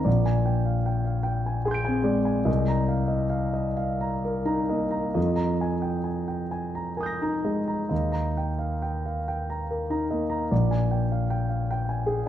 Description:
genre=classical, impressionist solo piano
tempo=42-54 BPM (dotted quarters)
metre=6/8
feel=rubato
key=Eb major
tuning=A4 = 439 Hz
part: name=dark concert grand piano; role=solo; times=0.0-12.3 s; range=Bb1 to D7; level=-24 LUFS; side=equal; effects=none
room=moderate concert hall reverb, RT60 1.7 s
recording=dark, warm production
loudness=-24 LUFS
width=side -11 dB against mid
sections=0.0-12.3 A section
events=none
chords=0.1 Bb13; 2.5 Cm7; 5.2 Fm11; 7.9 Eb; 10.5 Bb6

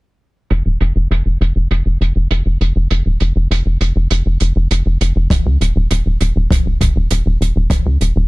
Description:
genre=synthwave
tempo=100 BPM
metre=4/4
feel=straight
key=unclear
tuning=A4 = 441 Hz
part: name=tight sequencer bass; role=bass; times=0.5-8.3 s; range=Eb1 to Db2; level=-14 LUFS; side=equal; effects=sidechain pumping
part: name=hi-hat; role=drums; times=0.5-8.1 s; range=none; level=-24 LUFS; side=right 6 dB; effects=low-pass filter on hats, low-pass filter on room
part: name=kick drum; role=drums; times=5.3-7.8 s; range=none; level=-16 LUFS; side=equal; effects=none
room=little or no reverb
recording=none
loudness=-13 LUFS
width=side -22 dB against mid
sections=0.5-8.3 A section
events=filter sweep on analog synth bass 0.5-8.3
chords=none

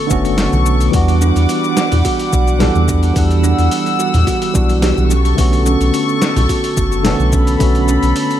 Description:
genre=sunset chillout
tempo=108 BPM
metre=4/4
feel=swing 53% on 16ths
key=E dorian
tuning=A4 = 439 Hz
part: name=tine electric piano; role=accompaniment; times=0.0-8.4 s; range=D3 to F#5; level=-18 LUFS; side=equal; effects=medium stereo tremolo, auto-pan, ping-pong delay
part: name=dark studio string section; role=sustained chords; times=0.0-8.4 s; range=G3 to E6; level=-20 LUFS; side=left 1 dB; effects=none
part: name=warm sub bass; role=bass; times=0.1-8.1 s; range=F#1 to E2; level=-14 LUFS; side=equal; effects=none
part: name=dusty soul sampler-style drum kit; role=drums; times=0.1-8.4 s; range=cabasa, hi-hat, snare drum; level=-23 LUFS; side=equal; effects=none
part: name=electronic kick drum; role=drums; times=0.1-7.7 s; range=none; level=-19 LUFS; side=equal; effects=overdrive
part: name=congas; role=percussion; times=0.5-7.3 s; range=none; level=-23 LUFS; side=right 1 dB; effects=none
part: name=kalimba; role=arpeggios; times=1.2-8.1 s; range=C#4 to A4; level=-20 LUFS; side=right 4 dB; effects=ping-pong delay
room=digital ambience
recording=none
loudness=-12 LUFS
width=side -11 dB against mid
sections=0.0-8.4 A section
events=none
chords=0.0 Bm9; 0.9 Em9; 5.1 Bm9

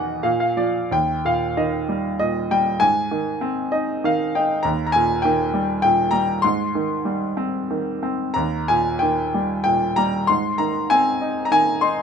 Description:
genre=classical, lyrical solo piano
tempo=88-104 BPM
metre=3/4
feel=rubato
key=Ab major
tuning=A4 = 440 Hz
part: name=clear grand piano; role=solo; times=0.0-12.0 s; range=Eb2 to C6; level=-18 LUFS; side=equal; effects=none
room=light reverb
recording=minimal, uncompressed stereo recording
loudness=-18 LUFS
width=side -6 dB against mid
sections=0.9-12.0 A section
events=grand piano fill 0.0-0.9, 3.4-4.6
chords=0.2 A#7; 0.9 Eb; 2.8 Ab; 4.6 Eb; 6.4 Abmaj7; 8.4 Eb; 10.3 Ab

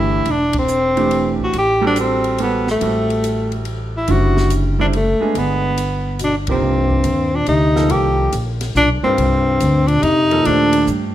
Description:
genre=modal jazz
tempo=141 BPM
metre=3/4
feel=swing 66% on 8ths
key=C dorian from 6.6 s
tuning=A4 = 440 Hz
part: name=breathy tenor saxophone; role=melody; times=0.0-10.9 s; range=A3 to G4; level=-17 LUFS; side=equal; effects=plate reverb
part: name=clear baby grand piano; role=accompaniment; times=0.0-11.1 s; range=C3 to C5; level=-22 LUFS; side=right 5 dB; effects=none
part: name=upright bass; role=bass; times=0.0-11.1 s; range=E1 to G2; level=-20 LUFS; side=equal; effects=none
part: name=compact cocktail drum kit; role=drums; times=0.3-11.0 s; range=hi-hat, kick drum, ride cymbal, snare drum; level=-30 LUFS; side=left 2 dB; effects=none
part: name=mellow bass clarinet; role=second line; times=6.2-10.9 s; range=G2 to Eb3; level=-23 LUFS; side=left 4 dB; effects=none
room=moderate club reverb, RT60 0.8 s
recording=none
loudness=-14 LUFS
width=side -12 dB against mid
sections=0.0-6.6 A section; 6.6-11.1 B section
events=band accent 0.5, 6.4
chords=0.0 Am7; 1.5 Bm/A (rootless); 5.4 G(b9); 6.6 Cm9

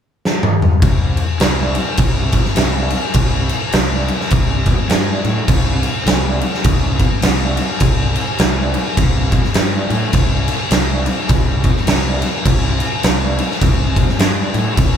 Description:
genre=stoner and doom metal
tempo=103 BPM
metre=4/4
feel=swing 60% on 8ths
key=unclear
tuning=A4 = 440 Hz
part: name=oversized low-tuned drum kit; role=drums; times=0.3-14.9 s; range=crash cymbal, kick drum, snare drum, toms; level=-14 LUFS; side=equal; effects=none
part: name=fuzz fingered electric bass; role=bass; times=0.8-15.0 s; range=C2 to A2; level=-20 LUFS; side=right 1 dB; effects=overdrive
room=little or no reverb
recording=band playing live in one room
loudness=-13 LUFS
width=side -8 dB against mid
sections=0.8-15.0 A section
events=drum fill 0.2-0.8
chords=none

